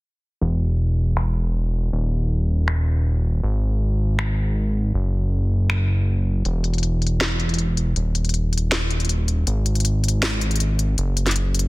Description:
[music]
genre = future bass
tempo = 159 BPM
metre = 4/4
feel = half-time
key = unclear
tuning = A4 = 441 Hz
[part]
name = fat analog bass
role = bass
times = 0.4-11.7 s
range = D#1 to G#1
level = -19 LUFS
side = equal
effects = none
[part]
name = trap drum kit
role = drums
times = 1.2-11.7 s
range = finger snaps, hi-hat, snare drum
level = -25 LUFS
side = left 1 dB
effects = soft clipping on snare, low-pass filter on snare, low-pass filter on hats
[sound]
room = digital ambience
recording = dense, heavily limited modern master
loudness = -19 LUFS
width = side -21 dB against mid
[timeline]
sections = 0.4-11.7 A section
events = filter sweep on drum 0.4-11.7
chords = none

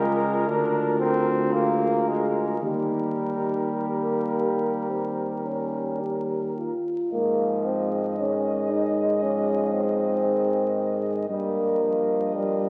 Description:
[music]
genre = classical, hymn-like piece for brass band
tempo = 52-61 BPM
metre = 4/4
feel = rubato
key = Ab major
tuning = A4 = 438 Hz
[part]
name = warm flugelhorn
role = melody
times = 0.0-12.7 s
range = Bb4 to Eb5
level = -34 LUFS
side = equal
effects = none
[part]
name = mellow French horn section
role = second line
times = 0.0-12.7 s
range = G4 to Bb4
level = -33 LUFS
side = equal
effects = none
[part]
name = clear trombone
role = accompaniment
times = 0.0-12.7 s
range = Eb3 to D4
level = -33 LUFS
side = equal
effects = none
[part]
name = warm euphonium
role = accompaniment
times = 0.0-12.7 s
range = G3 to G4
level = -30 LUFS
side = equal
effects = none
[part]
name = mellow tuba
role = bass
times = 0.0-12.7 s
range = Db2 to Ab2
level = -31 LUFS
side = equal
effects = none
[sound]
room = wet concert hall reverb, RT60 2.1 s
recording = very old 78 rpm record, vinyl crackle, nothing above 10.8 kHz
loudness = -25 LUFS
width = mono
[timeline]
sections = 0.0-7.1 A section; 7.1-12.7 B section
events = none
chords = 0.5 Bb7/D; 2.6 Eb; 7.1 Ab; 11.3 Eb/G

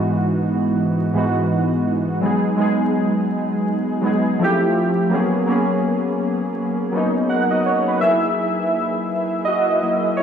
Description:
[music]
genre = hip hop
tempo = 83 BPM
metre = 4/4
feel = swing 58% on 16ths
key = G# minor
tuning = A4 = 442 Hz
[part]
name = warbly lo-fi synth keys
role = solo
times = 0.0-10.2 s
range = G#2 to F#5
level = -17 LUFS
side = equal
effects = chorus, cassette tape, low-pass filter
[sound]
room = light reverb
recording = vinyl crackle, studio reverb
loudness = -17 LUFS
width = side -8 dB against mid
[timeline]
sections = 0.0-8.0 A section; 8.0-10.2 B section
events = synth keys solo 8.0-10.2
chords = 0.0 Emaj9/G#; 2.2 G#m7; 4.4 Fmaj9; 5.1 G#m11; 8.0 F#9

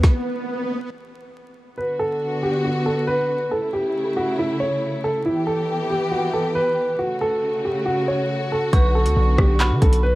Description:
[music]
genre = hip hop, drill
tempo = 138 BPM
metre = 4/4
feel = half-time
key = B minor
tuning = A4 = 440 Hz
[part]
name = hard-hitting 808-style bass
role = bass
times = 0.0, 8.7-10.2 s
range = B1 to D3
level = -18 LUFS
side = equal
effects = none
[part]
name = drill drum kit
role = drums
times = 0.0-0.1, 8.7-10.0 s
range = handclaps, hi-hat, kick drum, rim click, snare drum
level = -16 LUFS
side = equal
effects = none
[part]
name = swell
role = sound effects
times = 0.0-0.9 s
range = none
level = -28 LUFS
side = right 1 dB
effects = none
[part]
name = dark concert grand piano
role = melody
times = 1.8-10.2 s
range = E4 to C#5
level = -22 LUFS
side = right 1 dB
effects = tape echo
[part]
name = warm studio string section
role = sustained chords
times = 1.8-10.2 s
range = C#3 to G4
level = -25 LUFS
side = left 1 dB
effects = none
[part]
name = dark detuned synth bell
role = second line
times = 8.7-10.2 s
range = B5 to C#6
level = -27 LUFS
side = right 4 dB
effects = chorus, tape echo
[sound]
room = little or no reverb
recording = dark, warm production, vinyl crackle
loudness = -19 LUFS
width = side -18 dB against mid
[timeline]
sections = 0.0-1.8 A section; 1.8-10.2 B section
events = swell 0.0-1.8; stop 0.0-1.8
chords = 0.0 N.C.; 1.8 Bm; 3.5 A; 5.3 Em; 7.0 F#m; 8.7 Bm

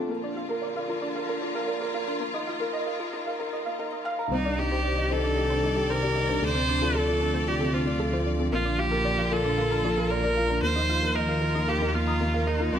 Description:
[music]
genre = piano and strings electronica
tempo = 114 BPM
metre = 4/4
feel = straight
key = unclear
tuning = A4 = 436 Hz
[part]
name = warm symphonic string section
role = sustained chords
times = 0.0-12.8 s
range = C3 to D5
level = -33 LUFS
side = left 1 dB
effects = none
[part]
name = soft round pluck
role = arpeggios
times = 0.0-12.8 s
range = A4 to F6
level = -34 LUFS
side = left 2 dB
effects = analog chorus, tape echo
[part]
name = felt-muted upright piano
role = riff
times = 0.0-12.8 s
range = A3 to Bb5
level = -30 LUFS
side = right 1 dB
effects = tape echo
[part]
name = dark detuned saw bass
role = bass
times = 0.0-12.8 s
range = Bb1 to Eb2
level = -29 LUFS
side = equal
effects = none
[part]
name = clear viola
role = melody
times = 4.3-12.8 s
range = Eb4 to C5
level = -27 LUFS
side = equal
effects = none
[sound]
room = moderate lush hall reverb, RT60 1.6 s, small room ambience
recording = high-pass filter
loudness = -24 LUFS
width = side -9 dB against mid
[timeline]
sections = 0.0-4.3 A section; 4.3-12.8 B section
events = build-up 0.0-4.3; filter sweep on synth arpeggio sound 0.0-4.3; drop 4.3-12.8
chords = 0.1 Bb; 2.2 Ebsus2; 4.3 Cmadd9; 6.4 Dm7; 8.5 Bb; 10.6 Ebsus2

